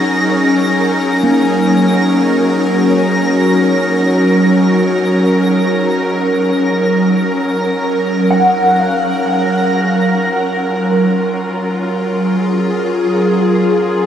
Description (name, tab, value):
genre	ambient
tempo	free time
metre	none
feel	none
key	F# major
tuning	A4 = 440 Hz
part	evolving wavetable pad	sustained chords	0.0-14.1 s	F#3 to A#4	-13 LUFS	equal	ensemble chorus, built-in reverb
part	mellow electric guitar	arpeggios	0.0-12.3 s	A#3 to F#5	-19 LUFS	equal	analog chorus, diffuse ambient delay
part	analog drone	drone	0.1-9.8 s	F#3 to C#4	-17 LUFS	left 2 dB	chorus
part	twinkling granular texture	texture	0.0-9.8 s	A#6	-22 LUFS	right 1 dB	built-in reverb
room	wet shimmer reverb, RT60 6.4 s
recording	cassette tape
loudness	-11 LUFS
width	side -9 dB against mid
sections	0.0-9.8 A section; 9.8-14.1 B section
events	none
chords	0.0 F#6